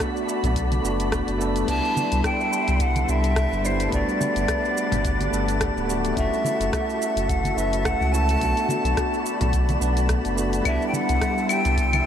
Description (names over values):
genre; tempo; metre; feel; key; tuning
sunset chillout; 107 BPM; 4/4; swing 56% on 16ths; C lydian; A4 = 440 Hz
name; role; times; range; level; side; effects
bell-like tine electric piano; accompaniment; 0.0-12.1 s; G3 to B4; -27 LUFS; equal; auto-pan, ping-pong delay
soft string machine; sustained chords; 0.0-12.1 s; G3 to D6; -30 LUFS; left 1 dB; phaser, ensemble chorus
deep house drum kit; drums; 0.0-12.0 s; claves, crash cymbal, hi-hat, rim click, shaker; -31 LUFS; equal; overdrive
electronic kick drum; drums; 0.0-11.9 s; none; -29 LUFS; equal; none
drifting glass-harmonics texture; texture; 0.0-12.1 s; A5 to B5; -36 LUFS; left 3 dB; chorus, built-in reverb
warm sub bass; bass; 0.4-12.0 s; D1 to C#2; -24 LUFS; equal; none
congas; percussion; 0.4-12.0 s; none; -33 LUFS; right 2 dB; none
bright silver concert flute; melody; 1.7-12.1 s; C5 to A5; -26 LUFS; equal; ping-pong delay
room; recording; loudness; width
moderate huge ambient reverb, RT60 9.0 s; dreamy mix soaked in reverb; -20 LUFS; side -9 dB against mid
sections
0.0-12.1 A section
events
none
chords
0.0 Bm7; 1.7 Cmaj7; 3.9 Gmaj7; 6.2 F#m7; 8.4 Bm7; 10.7 Cmaj7